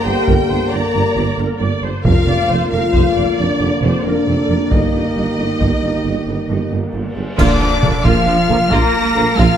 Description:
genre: cinematic, epic orchestral film score.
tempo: 90 BPM (dotted quarters).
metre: 12/8.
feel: straight.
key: Bb major.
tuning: A4 = 436 Hz.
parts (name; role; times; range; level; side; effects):
warm symphonic violin section; melody; 0.0-9.6 s; C5 to Bb6; -25 LUFS; left 3 dB; none.
warm symphonic violin section; second line; 0.0-9.6 s; C5 to Bb5; -24 LUFS; left 2 dB; none.
warm symphonic viola section; accompaniment; 0.0-9.6 s; D3 to D5; -23 LUFS; right 2 dB; none.
bright trombone section; sustained chords; 0.0-9.2 s; D3 to Bb3; -24 LUFS; right 2 dB; none.
dark French horn section; sustained chords; 0.0-9.6 s; C4 to Bb4; -21 LUFS; left 4 dB; none.
clear symphonic double bass section; bass; 0.1-9.5 s; F1 to Bb1; -22 LUFS; right 3 dB; none.
rich studio cello section; bass; 0.1-9.6 s; F2 to Bb3; -22 LUFS; right 2 dB; none.
warm tuba; bass; 0.1-9.5 s; F1 to Bb1; -24 LUFS; right 4 dB; none.
taiko ensemble; drums; 0.3-9.6 s; none; -18 LUFS; equal; none.
timpani; percussion; 2.1-2.7 s; F2; -25 LUFS; equal; none.
cymbal swell, clash cymbals and concert bass drum; percussion; 4.7-8.2 s; none; -24 LUFS; equal; none.
mellow hollow silver concert flute; second line; 7.4-9.6 s; D5 to Bb5; -24 LUFS; left 4 dB; none.
warm trumpet; stabs; 7.4-9.6 s; D4 to Bb4; -21 LUFS; right 1 dB; none.
room: moderate scoring stage reverb, RT60 2.0 s.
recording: none.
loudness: -13 LUFS.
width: side -9 dB against mid.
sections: 0.0-7.4 A section; 7.4-9.6 B section.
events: band accent 7.4-7.8.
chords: 0.0 Gm; 2.1 Bb/F; 4.7 Eb/G; 7.4 Bb.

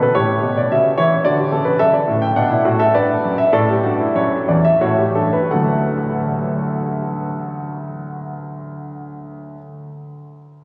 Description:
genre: classical, baroque-style 3-part fugue for grand piano.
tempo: 82-110 BPM.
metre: 3/4.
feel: straight.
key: D major.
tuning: A4 = 440 Hz.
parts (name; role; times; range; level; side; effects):
warm concert grand piano; solo; 0.0-9.6 s; D2 to G5; -18 LUFS; equal; none.
room: wet cathedral reverb, RT60 6.0 s.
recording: recorded on a phone in the room, studio reverb.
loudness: -17 LUFS.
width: mono.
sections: 0.0-5.5 A section; 5.5-9.8 B section.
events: slowing down 1.0-5.5.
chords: 0.2 A7; 1.3 D; 1.8 D/F#; 2.9 G; 3.5 A7sus4; 4.8 A7; 5.5 D.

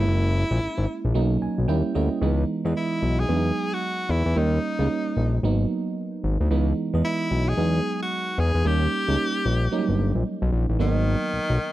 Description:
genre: R&B, new jack swing.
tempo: 112 BPM.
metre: 4/4.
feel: swing 61% on 16ths.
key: G# minor.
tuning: A4 = 439 Hz.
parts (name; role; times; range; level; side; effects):
edgy tenor saxophone; melody; 0.0-11.7 s; D#3 to G#4; -27 LUFS; left 1 dB; slapback echo.
FM electric piano; accompaniment; 0.0-11.7 s; E3 to G#5; -27 LUFS; right 4 dB; chorus.
fat analog bass; bass; 0.0-11.6 s; F#1 to E2; -22 LUFS; left 1 dB; none.
room: studio reverb.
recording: dry, close 1970s-style studio recording.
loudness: -21 LUFS.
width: side -15 dB against mid.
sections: 0.0-2.2 A section; 2.2-10.8 B section.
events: FM electric piano fill 1.1-2.2.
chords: 0.0 F#9; 1.1 Bmaj9; 1.7 D#7b9; 2.2 C#m7; 3.3 Emaj7; 4.4 D#7; 5.4 G#m7; 6.5 C#m7; 7.6 Emaj7; 8.6 D#7; 10.8 G#m7.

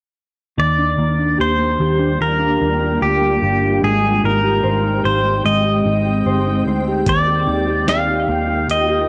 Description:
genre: dream pop.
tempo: 74 BPM.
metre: 4/4.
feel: straight.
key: Eb major.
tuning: A4 = 439 Hz.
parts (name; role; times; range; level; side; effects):
pedal steel guitar; melody; 0.6-9.1 s; G4 to F5; -21 LUFS; equal; analog delay.
shimmering ambient pad; sustained chords; 2.0-9.1 s; G3 to G5; -27 LUFS; equal; chorus, built-in reverb, cassette tape.
mellow electric guitar; arpeggios; 0.6-9.1 s; Eb3 to D5; -22 LUFS; equal; ensemble chorus, cassette tape, analog delay.
vintage muted picked electric bass; bass; 0.6-9.0 s; G1 to Eb2; -24 LUFS; equal; none.
dusty soul sampler-style drum kit; drums; 7.1-8.9 s; hi-hat, kick drum, snare drum; -25 LUFS; equal; cassette tape.
room: light reverb.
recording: home recording on cassette.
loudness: -17 LUFS.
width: mono.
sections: 0.6-9.1 A section.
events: none.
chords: 0.6 Ebmaj7; 3.8 Abmaj9; 7.1 Ebmaj7.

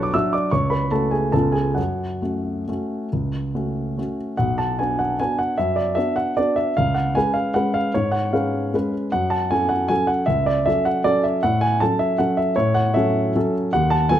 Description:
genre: classical, piano waltz.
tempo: 131-163 BPM.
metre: 3/4.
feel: rubato.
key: F# minor.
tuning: A4 = 440 Hz.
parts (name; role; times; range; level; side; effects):
warm baby grand piano; solo; 0.0-14.2 s; B1 to E6; -18 LUFS; equal; none.
room: moderate recital hall reverb, RT60 1.3 s.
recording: close, detailed microphones.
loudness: -19 LUFS.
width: side -11 dB against mid.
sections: 0.0-4.4 A section; 4.4-14.2 B section.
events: none.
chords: 0.0 Bm; 0.5 F#m/C#; 1.3 C#7; 1.8 F#m; 4.4 Bm; 6.8 C#7; 9.1 F#m; 11.4 F#m/A.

